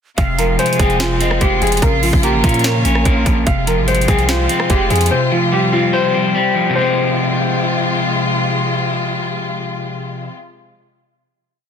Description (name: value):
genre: hip hop, trap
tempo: 146 BPM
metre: 4/4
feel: half-time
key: F minor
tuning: A4 = 435 Hz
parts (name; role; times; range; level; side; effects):
- warm baby grand piano; melody; 0.2-7.9 s; F4 to F5; -20 LUFS; left 1 dB; ping-pong delay
- hollow concert flute; second line; 0.2-3.0 s; Eb5 to Bb5; -25 LUFS; right 6 dB; ping-pong delay
- electric guitar at the edge of break-up; accompaniment; 0.2-10.4 s; C3 to Db5; -18 LUFS; left 1 dB; none
- rich chamber string section; sustained chords; 0.2-10.3 s; C3 to F4; -22 LUFS; left 2 dB; none
- long sustained 808-style bass; bass; 0.2-5.1 s; F1 to Bb2; -19 LUFS; right 1 dB; none
- trap drum kit; drums; 0.2-5.1 s; hi-hat, kick drum, rim click, snare drum; -18 LUFS; right 1 dB; none
room: light reverb, small room ambience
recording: dense, heavily limited modern master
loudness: -13 LUFS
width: side -8 dB against mid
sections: 0.2-6.8 hook; 6.8-10.0 final chord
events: none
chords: 0.2 Fm; 1.8 Bbm; 3.5 Fm; 5.1 Csus4; 6.8 Fm